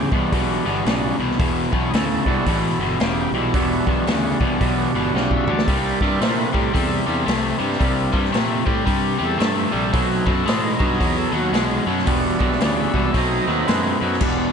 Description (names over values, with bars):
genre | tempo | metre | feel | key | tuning
blues rock power trio and southern rock | 112 BPM | 4/4 | swing 62% on 8ths | E minor | A4 = 440 Hz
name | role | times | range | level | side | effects
overdriven tonewheel organ | sustained chords | 0.0-14.5 s | G3 to G5 | -26 LUFS | right 4 dB | slow rotary speaker
crunchy overdriven guitar | riff | 0.0-14.5 s | E2 to A3 | -20 LUFS | left 1 dB | none
fuzz picked electric bass | bass | 0.0-14.5 s | E1 to Bb2 | -26 LUFS | equal | overdrive
vintage drum kit | drums | 0.1-14.4 s | crash cymbal, hi-hat, kick drum, snare drum, toms | -24 LUFS | equal | none
room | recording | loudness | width
light reverb | nothing above 10.8 kHz | -17 LUFS | side -6 dB against mid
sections
0.0-14.2 A section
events
tonewheel organ solo 0.0-14.5; drum fill 5.1-5.7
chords
0.0 Em9; 5.7 C7; 9.9 B7b9; 12.1 Em9; 13.1 B7b9